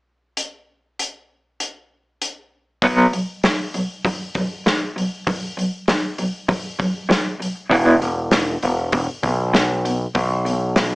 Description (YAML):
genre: quiet-loud alternative rock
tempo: 98 BPM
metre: 4/4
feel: straight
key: unclear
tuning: A4 = 440 Hz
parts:
  - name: loose indie drum kit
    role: drums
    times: 0.4-10.9 s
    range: hi-hat, kick drum, snare drum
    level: -22 LUFS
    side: equal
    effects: none
  - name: electric guitar through a small old amp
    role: arpeggios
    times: 2.8-10.9 s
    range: E2 to B3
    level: -20 LUFS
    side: equal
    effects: tremolo
  - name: growling picked electric bass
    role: bass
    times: 7.7-10.9 s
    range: E1 to B1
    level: -21 LUFS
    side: equal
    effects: overdrive
room: light reverb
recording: small speaker sound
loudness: -18 LUFS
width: side -22 dB against mid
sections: 0.4-2.8 A section; 2.8-10.9 B section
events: none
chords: 0.4 N.C.; 2.8 B5; 7.7 E5